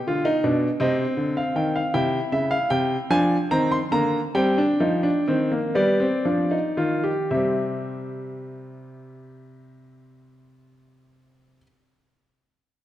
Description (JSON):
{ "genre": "classical, baroque-style 3-part fugue for grand piano", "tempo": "35-54 BPM (dotted quarters)", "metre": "6/8", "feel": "straight", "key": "unclear", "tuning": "A4 = 438 Hz", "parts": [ { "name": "warm baby grand piano", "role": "solo", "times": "0.0-11.6 s", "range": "B2 to C6", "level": "-21 LUFS", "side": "equal", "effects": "none" } ], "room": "wet concert hall reverb, RT60 1.9 s", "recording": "none", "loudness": "-20 LUFS", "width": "side -13 dB against mid", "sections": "0.0-7.3 A section; 7.3-10.7 B section", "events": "slowing down 0.8-7.3", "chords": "0.0 G7; 0.8 Cm; 1.9 C; 3.1 Fm; 4.3 Cm; 5.7 G7; 7.3 C", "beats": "0.81 | 1.93 3.09 | 4.35 5.74 | 7.30 8.99" }